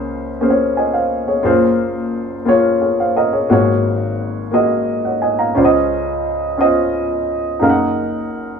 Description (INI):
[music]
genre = gospel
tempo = 58 BPM (dotted quarters)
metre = 6/8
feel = straight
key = Db major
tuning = A4 = 440 Hz
[part]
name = dark baby grand piano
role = solo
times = 0.0-8.6 s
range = Gb1 to Bb5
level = -14 LUFS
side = equal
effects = none
[sound]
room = wet small room reverb, RT60 0.6 s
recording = band playing live in one room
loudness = -14 LUFS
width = side -6 dB against mid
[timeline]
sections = 0.0-8.6 A section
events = none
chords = 0.0 Bbm9/Db; 1.4 Gbmaj9#11; 3.5 Ab9sus4; 5.6 Dbmaj9; 7.6 Gb69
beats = 0.42 | 1.45 2.48 | 3.50 4.53 | 5.56 6.58 | 7.61